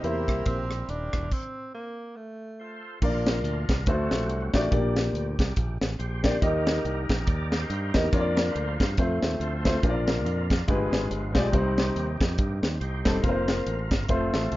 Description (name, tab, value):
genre	uptempo gospel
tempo	141 BPM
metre	4/4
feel	swing 58% on 8ths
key	Bb major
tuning	A4 = 441 Hz
part	breathy tenor saxophone	melody	0.0-2.8 s	A3 to E4	-35 LUFS	right 2 dB	plate reverb
part	warm grand piano	accompaniment	0.0-14.6 s	G2 to Eb5	-27 LUFS	left 1 dB	plate reverb
part	tonewheel organ	sustained chords	0.0-14.6 s	Eb3 to D5	-36 LUFS	right 1 dB	slow rotary speaker, overdrive, plate reverb
part	warm studio string section	sustained chords	0.0-1.3 s	E5 to C6	-47 LUFS	equal	none
part	modern bright fingered electric bass	bass	0.0-14.6 s	Eb1 to G2	-30 LUFS	equal	none
part	crisp fusion drum kit	drums	0.0-14.6 s	crash cymbal, hi-hat, kick drum, rim click, snare drum	-26 LUFS	equal	none
room	moderate small room ambience, RT60 0.5 s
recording	rough home demo mix, nothing above 7.5 kHz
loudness	-23 LUFS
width	side -16 dB against mid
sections	0.0-3.0 A section; 3.0-14.6 B section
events	stop 1.3-3.0; tonewheel organ solo 3.0-14.6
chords	0.0 C7; 1.3 N.C.; 2.2 F; 3.0 Bb; 3.9 D7; 4.7 Gm/Bb; 6.4 Eb; 8.1 Bb/F; 9.0 F; 9.8 Bb; 10.7 G7b9; 11.5 Cm; 13.2 Fsus4